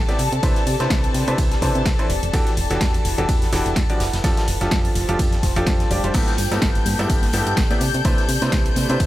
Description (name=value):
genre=piano house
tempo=126 BPM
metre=4/4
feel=swing 56% on 16ths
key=unclear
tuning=A4 = 440 Hz
part: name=dark chamber string section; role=sustained chords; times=0.0-9.1 s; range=A4 to G6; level=-28 LUFS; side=left 5 dB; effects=sidechain pumping
part: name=solid FM bass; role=bass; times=0.0-9.1 s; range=E1 to C3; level=-24 LUFS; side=equal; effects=sidechain pumping
part: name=warbly tape-like pad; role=texture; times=0.0-9.1 s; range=C4 to A5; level=-30 LUFS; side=right 1 dB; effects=chorus, built-in reverb, phaser, sidechain pumping
part: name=bright upright piano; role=riff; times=0.1-9.1 s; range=G2 to D5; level=-24 LUFS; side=equal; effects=sidechain pumping, tape echo
part: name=house drum kit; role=drums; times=0.1-9.1 s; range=crash cymbal, hi-hat, ride cymbal, snare drum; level=-28 LUFS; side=equal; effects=none
part: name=loose indie drum kit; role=drums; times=0.1-9.1 s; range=hi-hat, snare drum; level=-36 LUFS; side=equal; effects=none
part: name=electronic kick drum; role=drums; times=0.4-9.1 s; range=none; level=-21 LUFS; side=equal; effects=none
part: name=congas and tambourine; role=percussion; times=6.1-9.1 s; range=none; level=-30 LUFS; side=left 2 dB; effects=none
room=little or no reverb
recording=none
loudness=-17 LUFS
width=side -15 dB against mid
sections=0.0-9.1 A section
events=none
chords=0.2 Cmaj9; 2.1 Em11; 4.0 F69; 6.1 G69; 7.8 Cmaj9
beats=| 0.43 0.91 1.38 1.86 | 2.33 2.81 3.29 3.76 | 4.24 4.72 5.19 5.67 | 6.14 6.62 7.10 7.57 | 8.05 8.53 9.00